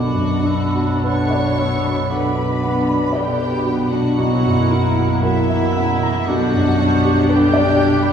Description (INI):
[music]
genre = classical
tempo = 48-61 BPM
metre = 4/4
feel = rubato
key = B minor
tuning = A4 = 440 Hz
[part]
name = rich chamber violin section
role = melody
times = 0.0-8.1 s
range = E5 to C#6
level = -30 LUFS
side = left 2 dB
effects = none
[part]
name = warm grand piano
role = melody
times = 0.0-8.1 s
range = B1 to B5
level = -19 LUFS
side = equal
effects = none
[part]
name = bright clarinet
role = second line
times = 0.0-8.1 s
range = D4 to E4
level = -27 LUFS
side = right 1 dB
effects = none
[part]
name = mellow cor anglais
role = second line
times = 0.0-8.1 s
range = A#4 to F#5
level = -29 LUFS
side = right 2 dB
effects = none
[part]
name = mellow hollow small flute group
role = second line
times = 0.0-8.1 s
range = A#5 to G6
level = -29 LUFS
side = right 2 dB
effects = none
[part]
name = rich chamber violin section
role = second line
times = 0.0-8.1 s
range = E4 to C#5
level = -28 LUFS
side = left 2 dB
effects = none
[part]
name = rich chamber viola section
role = accompaniment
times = 0.0-8.1 s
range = C#3 to E4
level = -25 LUFS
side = equal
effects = none
[part]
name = mellow French horn section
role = sustained chords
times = 0.0-8.1 s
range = G3 to E4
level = -24 LUFS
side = equal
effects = none
[part]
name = rich chamber cello section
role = bass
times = 0.0-8.1 s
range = B2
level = -25 LUFS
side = equal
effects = none
[part]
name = rich chamber double bass section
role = bass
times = 0.0-8.1 s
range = B1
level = -26 LUFS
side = right 1 dB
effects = none
[part]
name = timpani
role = percussion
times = 0.0-5.7 s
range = B2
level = -30 LUFS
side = equal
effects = none
[sound]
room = wet scoring stage reverb, RT60 1.8 s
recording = heard from further back in the room, small room ambience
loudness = -15 LUFS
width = side -8 dB against mid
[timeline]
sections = 0.0-8.1 A section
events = none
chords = 0.0 Bm; 4.2 F#7/B; 6.3 Gmaj7/B